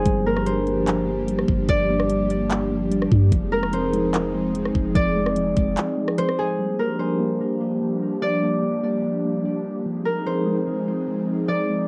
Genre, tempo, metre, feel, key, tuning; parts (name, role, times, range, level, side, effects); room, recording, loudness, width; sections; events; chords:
hip hop, atmospheric cloud-rap; 147 BPM; 4/4; half-time; A4 = 440 Hz
concert harp; melody; 0.0-11.9 s; Ab4 to D5; -28 LUFS; equal; cassette tape, analog delay
airy breathy pad; sustained chords; 0.0-11.9 s; F3 to Ab4; -27 LUFS; equal; chorus, cassette tape
warbly dusty pluck; arpeggios; 0.0-11.9 s; F3 to Bb3; -31 LUFS; equal; chorus, cassette tape, analog delay
soft 808-style bass; bass; 0.0-5.8 s; F1 to G2; -28 LUFS; equal
trap drum kit; drums; 0.1-6.4 s; handclaps, hi-hat, kick drum, rim click; -27 LUFS; equal; cassette tape
light reverb; home recording on cassette; -22 LUFS; mono
0.0-6.6 A section; 6.6-11.9 B section
break 5.8-6.6
0.1 Gm7; 3.3 Fm7; 6.6 Gm7; 9.9 Fm7